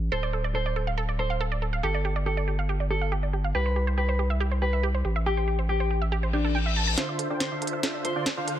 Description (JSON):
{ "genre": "future bass", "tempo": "140 BPM", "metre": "4/4", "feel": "half-time", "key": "unclear", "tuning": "A4 = 440 Hz", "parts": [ { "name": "saturated sub bass", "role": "bass", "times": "0.0-7.0 s", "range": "D1 to C2", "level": "-26 LUFS", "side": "equal", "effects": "none" }, { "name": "mellow electric guitar", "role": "melody", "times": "0.1-8.3 s", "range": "D4 to C5", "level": "-31 LUFS", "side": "left 1 dB", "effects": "low-pass filter, dub echo" }, { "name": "wide unison pluck", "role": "arpeggios", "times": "0.1-8.5 s", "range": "G4 to A5", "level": "-32 LUFS", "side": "right 4 dB", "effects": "ping-pong delay" }, { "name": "reverse cymbal and riser", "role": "sound effects", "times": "6.3-8.6 s", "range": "none", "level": "-32 LUFS", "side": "left 7 dB", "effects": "none" }, { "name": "supersaw chords", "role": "riff", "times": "7.0-8.6 s", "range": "D3 to G5", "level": "-29 LUFS", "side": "right 1 dB", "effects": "wide subtle chorus, low-pass filter" }, { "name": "trap drum kit", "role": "drums", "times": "7.0-8.6 s", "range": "hi-hat, snare drum", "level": "-29 LUFS", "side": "equal", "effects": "low-pass filter on snare, low-pass filter on hats" } ], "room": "digital ambience", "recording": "none", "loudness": "-24 LUFS", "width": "side -11 dB against mid", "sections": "0.0-7.0 A section; 7.0-8.6 B section", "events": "reverse cymbal 6.3-7.0; build-up 7.0-8.6; drum fill 7.0-8.6; filter sweep on supersaw synth 7.0-8.6", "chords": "0.1 D5; 1.8 G5; 3.5 C5; 5.0 Am7; 7.0 Dm7" }